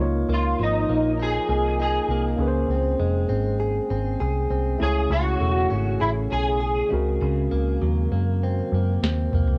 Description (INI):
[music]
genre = indie pop, bedroom pop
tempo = 100 BPM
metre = 4/4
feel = straight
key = Db major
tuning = A4 = 441 Hz
[part]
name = barky tine electric piano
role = accompaniment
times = 0.0-9.6 s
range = Ab3 to Db5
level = -32 LUFS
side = equal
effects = overdrive, cassette tape
[part]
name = direct-recorded clean electric guitar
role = accompaniment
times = 0.0-9.6 s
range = C#3 to Ab4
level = -30 LUFS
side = equal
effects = subtle chorus, vibrato effect, cassette tape
[part]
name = vintage muted picked electric bass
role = bass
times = 0.0-9.6 s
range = E1 to Gb2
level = -26 LUFS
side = equal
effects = none
[part]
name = electric guitar at the edge of break-up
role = melody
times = 0.3-6.9 s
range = Eb4 to Ab4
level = -27 LUFS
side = equal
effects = ensemble chorus, cassette tape, tape echo
[part]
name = soft vintage rhythm box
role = drums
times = 9.0-9.6 s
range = snare drum, toms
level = -25 LUFS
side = equal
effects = none
[sound]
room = light reverb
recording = home recording on cassette, nothing above 10.6 kHz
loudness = -23 LUFS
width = mono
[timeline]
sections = 0.0-9.6 A section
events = drum fill 9.0-9.6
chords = 0.0 Db69; 2.4 Bbm9; 4.8 Amaj7; 6.9 Ab9/Db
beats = 0.59 1.19 1.80 | 2.40 3.00 3.60 4.21 | 4.81 5.41 6.02 6.62 | 7.22 7.83 8.43 9.03